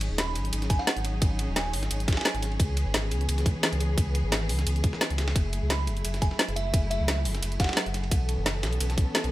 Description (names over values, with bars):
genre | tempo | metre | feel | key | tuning
liquid drum and bass | 174 BPM | 4/4 | swing 54% on 16ths | C# minor | A4 = 441 Hz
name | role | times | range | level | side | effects
warm symphonic string section | sustained chords | 0.0-9.3 s | E3 to A4 | -35 LUFS | left 1 dB | sidechain pumping
sub bass with octave | bass | 0.0-9.3 s | D#1 to C#2 | -28 LUFS | equal | tube saturation
drum and bass drum kit | drums | 0.0-9.3 s | hi-hat, ride cymbal, snare drum | -30 LUFS | equal | overdrive, studio reverb
dusty soul sampler-style drum kit | drums | 0.0-9.3 s | ride cymbal, snare drum | -36 LUFS | right 1 dB | high-pass filter on snare, studio reverb, high-pass filter on cymbals, high-pass filter on room
glassy synth bell | melody | 0.2-2.5, 5.7-8.1 s | E5 to B5 | -36 LUFS | right 3 dB | chorus, tape echo
electronic kick drum | drums | 0.7-9.1 s | none | -25 LUFS | equal | studio reverb
room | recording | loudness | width
little or no reverb | none | -24 LUFS | side -16 dB against mid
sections
0.0-9.3 A section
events
none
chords
0.0 G#7sus4; 2.6 C#m7; 5.4 F#m9; 8.1 B9sus4